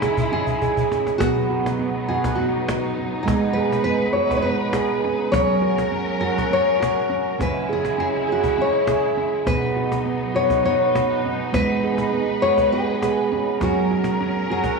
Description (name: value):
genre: world meditative, meditative tuned percussion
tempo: 203 BPM (eighths)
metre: 7/8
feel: straight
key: B major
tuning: A4 = 441 Hz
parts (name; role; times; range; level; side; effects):
- nylon-string guitar; melody; 0.0-14.8 s; F#4 to E5; -23 LUFS; left 3 dB; none
- muted studio string section; sustained chords; 0.0-14.8 s; C#3 to B4; -27 LUFS; left 1 dB; none
- handpan; arpeggios; 0.0-14.8 s; B2 to G#4; -22 LUFS; right 5 dB; none
- cajon; percussion; 0.0-14.8 s; none; -29 LUFS; left 2 dB; none
room: wet concert hall reverb, RT60 2.0 s, small room ambience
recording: worn, warbling old tape, cassette tape, warbly pitch drift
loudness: -18 LUFS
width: side -3 dB against mid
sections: 0.0-1.2 A section; 1.2-14.8 B section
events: drum fill 0.5-1.2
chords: 0.0 C#m; 1.2 B; 3.3 G#m; 5.3 F#; 7.4 C#m; 9.5 B; 11.5 G#m; 13.6 F#